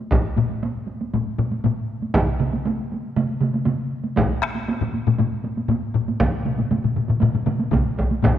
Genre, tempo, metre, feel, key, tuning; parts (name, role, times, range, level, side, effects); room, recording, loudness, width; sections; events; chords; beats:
japanese traditional, taiko drum ensemble; 118 BPM; 4/4; straight
taiko ensemble; percussion; 0.1-8.3 s; -26 LUFS; right 3 dB
taiko ensemble; percussion; 0.1-8.3 s; -22 LUFS; left 4 dB
taiko ensemble; percussion; 0.1-8.4 s; -22 LUFS; right 1 dB
taiko ensemble; percussion; 2.1-7.8 s; -25 LUFS; right 3 dB
wet concert hall reverb, RT60 2.1 s; -20 LUFS; side -11 dB against mid
0.0-8.2 A section
| 0.12 0.62 1.13 1.64 | 2.15 2.66 3.16 3.67 | 4.18 4.68 5.19 5.70 | 6.20 6.71 7.21 7.72 | 8.22